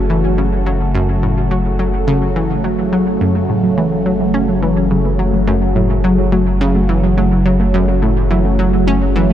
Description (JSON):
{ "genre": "ambient, sequencer-driven space music", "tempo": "106 BPM", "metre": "4/4", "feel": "straight", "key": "F# minor", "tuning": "A4 = 440 Hz", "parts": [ { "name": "phased analog pad", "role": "sustained chords", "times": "0.0-9.3 s", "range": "C#3 to A4", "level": "-18 LUFS", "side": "right 1 dB", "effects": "phaser, chorus" }, { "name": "analog pluck", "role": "riff", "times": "0.0-9.3 s", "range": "F#2 to C#4", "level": "-18 LUFS", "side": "left 1 dB", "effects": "chorus, analog delay" }, { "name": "warm sub bass", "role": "bass", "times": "0.0-9.3 s", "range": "F#1", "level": "-18 LUFS", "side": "equal", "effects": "none" }, { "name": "warbly dusty pluck", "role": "arpeggios", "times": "3.2-9.3 s", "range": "F#3 to A3", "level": "-20 LUFS", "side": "right 2 dB", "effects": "chorus, auto-pan, analog delay" } ], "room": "moderate huge ambient reverb, RT60 8.1 s", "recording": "dark, warm production", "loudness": "-12 LUFS", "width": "side -11 dB against mid", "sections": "0.0-9.3 A section", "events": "none", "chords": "0.0 F#m" }